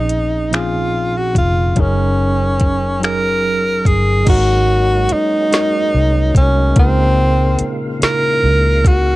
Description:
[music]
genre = slow six-eight R&B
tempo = 48 BPM (dotted quarters)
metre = 6/8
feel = straight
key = unclear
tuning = A4 = 440 Hz
[part]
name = breathy tenor saxophone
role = melody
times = 0.0-9.2 s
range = C4 to Bb4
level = -16 LUFS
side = equal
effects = none
[part]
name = mellow tine electric piano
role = accompaniment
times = 0.0-9.2 s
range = Bb2 to Db5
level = -21 LUFS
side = right 1 dB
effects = overdrive, medium stereo tremolo
[part]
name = vintage muted fingered electric bass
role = bass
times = 0.0-9.2 s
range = F1 to Db2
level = -17 LUFS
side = equal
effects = none
[part]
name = smooth R&B drum kit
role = drums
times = 0.1-9.0 s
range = crash cymbal, finger snaps, hi-hat, kick drum, snare drum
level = -14 LUFS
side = equal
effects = none
[part]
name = tonewheel organ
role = sustained chords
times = 4.3-9.2 s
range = Bb2 to F5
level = -26 LUFS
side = equal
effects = overdrive, chorus vibrato, slow rotary speaker
[sound]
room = little or no reverb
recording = none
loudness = -12 LUFS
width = side -18 dB against mid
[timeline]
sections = 0.0-4.3 A section; 4.3-9.2 B section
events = none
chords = 0.0 Bbm11; 1.8 Gb69; 4.3 Ab9sus4; 6.8 Db6

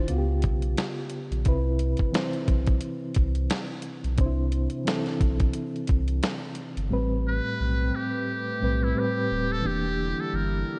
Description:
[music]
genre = lo-fi hip hop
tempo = 88 BPM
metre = 4/4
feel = swing 56% on 16ths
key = C major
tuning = A4 = 440 Hz
[part]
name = mellow reed electric piano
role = accompaniment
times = 0.0-10.8 s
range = A2 to C5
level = -32 LUFS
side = equal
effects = fast tremolo, cassette tape, low-pass filter
[part]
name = warm sub bass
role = bass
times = 0.0-10.6 s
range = D1 to Db2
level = -29 LUFS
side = equal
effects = none
[part]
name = dusty soul sampler-style drum kit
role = drums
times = 0.1-6.9 s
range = hi-hat, kick drum, snare drum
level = -28 LUFS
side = equal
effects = vintage 12-bit sampler grit
[part]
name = hollow soft pad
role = sustained chords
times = 6.9-10.8 s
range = D3 to B4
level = -37 LUFS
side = equal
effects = chorus, low-pass filter
[part]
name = trumpet with metal mute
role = melody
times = 7.3-10.8 s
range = E4 to B4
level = -34 LUFS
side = equal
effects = low-pass filter, analog delay
[sound]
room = light reverb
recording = cassette tape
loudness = -27 LUFS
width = mono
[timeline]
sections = 0.0-6.9 A section; 6.9-10.8 B section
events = none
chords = 0.1 Db7#11; 1.5 Cmaj7; 6.9 Am9; 9.6 Em7b5

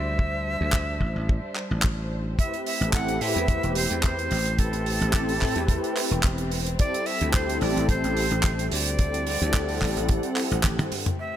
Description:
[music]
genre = nu-disco, nu disco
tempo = 109 BPM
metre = 4/4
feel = swing 54% on 16ths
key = unclear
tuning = A4 = 438 Hz
[part]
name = breathy bright jazz flute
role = melody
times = 0.0-11.4 s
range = A4 to F#5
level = -30 LUFS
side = right 1 dB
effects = dub echo
[part]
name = dark studio string section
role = sustained chords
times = 0.0-11.4 s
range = G3 to F#5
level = -36 LUFS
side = left 1 dB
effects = sidechain pumping
[part]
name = dry thumbed slap bass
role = bass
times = 0.0-11.0 s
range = E1 to A2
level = -28 LUFS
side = equal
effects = none
[part]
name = kick drum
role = drums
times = 0.2-10.8 s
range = none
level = -24 LUFS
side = equal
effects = none
[part]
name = damped 70s drum kit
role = drums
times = 0.7-11.3 s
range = crash cymbal, handclaps, hi-hat, shaker, toms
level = -29 LUFS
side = right 2 dB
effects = low-pass filter on hats, low-pass filter on toms, low-pass filter on cymbals, low-pass filter on snare, low-pass filter on perc, low-pass filter on room
[part]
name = warm analog pad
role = accompaniment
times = 2.4-11.3 s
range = A2 to B4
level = -29 LUFS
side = equal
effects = chorus, sidechain pumping, dub echo
[sound]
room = little or no reverb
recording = none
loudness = -22 LUFS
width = side -11 dB against mid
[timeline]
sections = 0.0-11.2 A section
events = drum fill 10.6-11.2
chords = 0.0 D9sus4; 2.4 Am7; 6.8 D9sus4

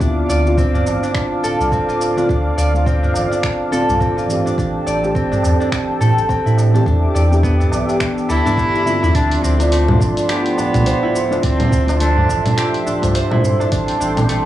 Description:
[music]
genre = organic downtempo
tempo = 105 BPM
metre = 4/4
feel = swing 58% on 16ths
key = D dorian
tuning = A4 = 440 Hz
[part]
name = muted felt-like synth keys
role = accompaniment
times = 0.0-14.5 s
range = D3 to D5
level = -23 LUFS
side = equal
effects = chorus, sidechain pumping, cassette tape, analog delay, plate reverb
[part]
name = warm analog pad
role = sustained chords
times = 0.0-14.5 s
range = F3 to D6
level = -24 LUFS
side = right 2 dB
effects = chorus, sidechain pumping, cassette tape, plate reverb
[part]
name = concert harp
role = arpeggios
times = 0.0-14.5 s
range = A3 to D5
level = -20 LUFS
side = equal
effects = cassette tape, analog delay, plate reverb
[part]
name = warm sub bass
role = bass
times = 0.0-14.5 s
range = D1 to A2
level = -18 LUFS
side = equal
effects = none
[part]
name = deep house drum kit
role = drums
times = 0.0-14.4 s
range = congas, finger snaps, hi-hat, shaker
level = -24 LUFS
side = equal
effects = overdrive, cassette tape
[part]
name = electronic kick drum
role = drums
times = 0.0-13.9 s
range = none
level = -22 LUFS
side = equal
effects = overdrive, cassette tape
[part]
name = bronze singing bowl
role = texture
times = 0.0-9.2 s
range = none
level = barely audible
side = none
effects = none
[part]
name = tabla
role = percussion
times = 0.3-14.3 s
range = none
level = -26 LUFS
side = left 2 dB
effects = none
[part]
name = warm cello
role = melody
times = 8.3-12.5 s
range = B3 to E4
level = -21 LUFS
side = right 2 dB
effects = cassette tape, analog delay, plate reverb
[sound]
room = light reverb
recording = home recording on cassette, studio reverb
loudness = -14 LUFS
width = side -13 dB against mid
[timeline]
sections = 0.0-9.1 A section; 9.1-14.5 B section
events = filter sweep on synth keys 0.0-9.1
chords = 0.0 Dm7; 4.6 Am7; 6.9 Em7; 9.1 Dm7; 13.7 Am7

